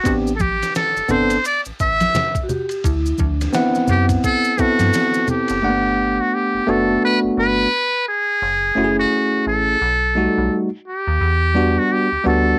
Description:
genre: hip hop, jazz-hop.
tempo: 86 BPM.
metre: 4/4.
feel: swing 61% on 16ths.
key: G major.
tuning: A4 = 439 Hz.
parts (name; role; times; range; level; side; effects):
trumpet with metal mute; melody; 0.0-12.6 s; F#4 to E5; -21 LUFS; equal; cassette tape.
bell-like tine electric piano; accompaniment; 0.0-12.6 s; G3 to F#5; -20 LUFS; equal; cassette tape.
metallic FM bass; bass; 0.1-12.5 s; F#1 to G2; -25 LUFS; equal; none.
dusty soul sampler-style drum kit; drums; 0.1-5.6 s; hi-hat, kick drum, ride cymbal, snare drum; -28 LUFS; equal; cassette tape.
maracas and congas; percussion; 0.1-5.6 s; none; -29 LUFS; equal; none.
vibraphone with soft mallets; second line; 2.4-3.7 s; D4 to G4; -27 LUFS; equal; cassette tape.
room: light reverb.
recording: home recording on cassette.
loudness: -18 LUFS.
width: mono.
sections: 0.0-5.6 A section; 5.6-12.6 B section.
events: none.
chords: 0.1 Am11; 2.8 D13; 5.6 Gmaj7; 8.4 F#m7; 9.8 B7b13; 11.2 Em9.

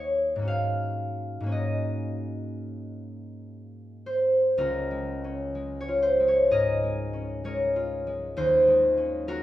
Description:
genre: classical, solo harp piece.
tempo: 57-67 BPM.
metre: 4/4.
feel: rubato.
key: Db major.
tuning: A4 = 440 Hz.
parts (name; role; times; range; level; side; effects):
concert harp; solo; 0.0-9.4 s; Db2 to G5; -24 LUFS; equal; none.
room: moderate recital hall reverb, RT60 1.4 s.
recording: heard from further back in the room.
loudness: -23 LUFS.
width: side -14 dB against mid.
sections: 0.0-4.6 A section; 4.6-9.4 B section.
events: none.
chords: 0.5 Ab9sus4; 4.6 Db6; 8.4 Ebm11.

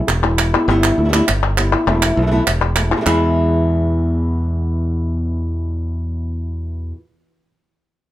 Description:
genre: flamenco.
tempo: 201 BPM.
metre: 4/4.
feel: straight.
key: E major.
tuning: A4 = 440 Hz.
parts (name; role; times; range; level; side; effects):
flamenco guitar; melody; 0.0-7.0 s; E2 to E4; -20 LUFS; equal; none.
modern bright fingered electric bass; bass; 0.1-6.9 s; E1 to E2; -18 LUFS; equal; none.
palmas hand claps; percussion; 0.1-3.1 s; none; -18 LUFS; left 1 dB; none.
room: moderate studio reverb, RT60 0.5 s.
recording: none.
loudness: -15 LUFS.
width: side -14 dB against mid.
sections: 0.0-3.1 A section; 3.1-5.5 B section.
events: none.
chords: 0.0 E; 0.7 G6; 1.9 Esus4; 3.1 E.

